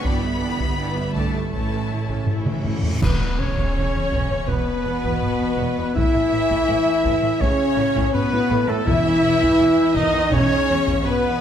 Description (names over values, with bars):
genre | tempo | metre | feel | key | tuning
cinematic, epic orchestral film score | 82 BPM | 4/4 | straight | unclear | A4 = 438 Hz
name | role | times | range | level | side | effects
rich symphonic violin section | melody | 0.0-11.4 s | A4 to B5 | -32 LUFS | left 3 dB | none
clear symphonic violin section | second line | 0.0-11.4 s | C#4 to E5 | -31 LUFS | left 2 dB | none
rich symphonic viola section | accompaniment | 0.0-11.4 s | E3 to E4 | -28 LUFS | equal | none
dark French horn section | sustained chords | 0.0-11.4 s | A3 to E4 | -23 LUFS | left 3 dB | none
warm trombone section | sustained chords | 0.0-11.4 s | A2 to C#4 | -28 LUFS | right 4 dB | none
rich symphonic cello section | bass | 0.0-11.3 s | E2 to B3 | -29 LUFS | right 3 dB | none
rich symphonic double bass section | bass | 0.0-10.8 s | E1 to A1 | -28 LUFS | right 4 dB | none
taiko ensemble | drums | 0.0-11.4 s | none | -26 LUFS | equal | none
reverse cymbal and impact | sound effects | 2.7-6.0 s | none | -32 LUFS | equal | none
cymbal swell, clash cymbals and concert bass drum | percussion | 0.1-4.5 s | none | -29 LUFS | equal | none
timpani | percussion | 1.5-3.0, 8.9-9.9 s | E2 to A2 | -30 LUFS | left 2 dB | none
mellow hollow concert flute | second line | 3.0-11.4 s | A4 to E5 | -28 LUFS | left 1 dB | none
warm trumpet | stabs | 3.0-11.4 s | A4 to E5 | -27 LUFS | right 2 dB | none
room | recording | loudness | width
wet scoring stage reverb, RT60 2.0 s | none | -18 LUFS | side -9 dB against mid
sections
0.0-3.0 A section; 3.0-11.4 A section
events
timpani fill 1.5-3.0; drum fill 2.3-3.0; reverse cymbal 2.7-3.0; band accent 3.0-3.8; impact 3.0-6.0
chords
0.0 G6; 1.5 A; 3.0 E5; 6.0 A; 8.9 E5